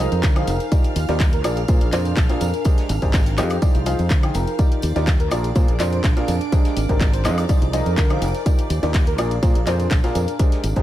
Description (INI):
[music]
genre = piano house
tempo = 124 BPM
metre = 4/4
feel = straight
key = unclear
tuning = A4 = 440 Hz
[part]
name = airy dreamy lead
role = melody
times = 0.0-10.4 s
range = F4 to C5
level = -30 LUFS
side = left 1 dB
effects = chorus, dub echo
[part]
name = string machine, violins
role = sustained chords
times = 0.0-10.8 s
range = D5 to F6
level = -37 LUFS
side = equal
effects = ensemble chorus, sidechain pumping
[part]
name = clear upright piano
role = riff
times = 0.0-10.8 s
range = Bb2 to G5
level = -25 LUFS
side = right 1 dB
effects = sidechain pumping
[part]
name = fingered electric bass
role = bass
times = 0.0-10.8 s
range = F1 to D3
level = -22 LUFS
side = equal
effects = sidechain pumping
[part]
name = warbly tape-like pad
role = texture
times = 0.0-10.8 s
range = D4 to C6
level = -31 LUFS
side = right 3 dB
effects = chorus, built-in reverb, sidechain pumping
[part]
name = house drum kit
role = drums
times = 0.1-10.8 s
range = handclaps, hi-hat, woodblock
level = -29 LUFS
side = left 1 dB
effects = none
[part]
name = tambourine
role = percussion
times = 0.1-10.8 s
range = none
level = -44 LUFS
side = equal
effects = none
[part]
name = electronic kick drum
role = drums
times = 0.2-10.8 s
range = none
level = -17 LUFS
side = equal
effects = none
[part]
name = modern studio drum kit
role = drums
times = 0.2-10.8 s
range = hi-hat, snare drum, tambourine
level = -40 LUFS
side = right 1 dB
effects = none
[sound]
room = little or no reverb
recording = none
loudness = -17 LUFS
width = side -13 dB against mid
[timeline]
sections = 0.0-10.8 A section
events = none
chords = 0.0 Fm7; 0.7 Ebmaj9; 1.4 Bb7; 2.7 Abmaj9#11; 3.4 Fm7; 4.6 Ebmaj9; 5.3 Bb7; 6.5 Abmaj9#11; 7.2 Fm7; 8.5 Ebmaj9; 9.2 Bb7